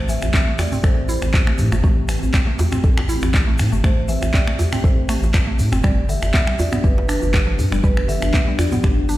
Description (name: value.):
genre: afro house.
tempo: 120 BPM.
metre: 4/4.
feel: swing 54% on 16ths.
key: A minor.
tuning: A4 = 440 Hz.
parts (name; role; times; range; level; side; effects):
marimba with medium hard mallets; melody; 0.0-9.2 s; B4 to E5; -29 LUFS; right 2 dB; tape echo.
ethereal airy pad; sustained chords; 0.0-9.2 s; E3 to G4; -27 LUFS; left 2 dB; ensemble chorus, built-in reverb, sidechain pumping.
round analog bass; bass; 0.0-9.2 s; F1 to A2; -21 LUFS; equal; sidechain pumping.
mallet-like synth pluck; arpeggios; 0.1-9.2 s; D3 to A4; -27 LUFS; right 1 dB; chorus, sidechain pumping, tape echo.
deep house drum kit; drums; 0.1-9.2 s; finger snaps, handclaps, hi-hat, toms; -25 LUFS; equal; none.
egg shaker; percussion; 0.1-9.2 s; none; -39 LUFS; left 3 dB; none.
djembe; percussion; 0.2-8.7 s; none; -24 LUFS; equal; none.
electronic kick drum; drums; 0.3-8.9 s; none; -17 LUFS; equal; none.
room: light reverb, small room ambience.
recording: played on a big sound system in a bare room, stone room reverb.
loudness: -16 LUFS.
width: side -16 dB against mid.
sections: 0.0-9.2 A section.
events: none.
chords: 0.0 Am7; 5.8 G7.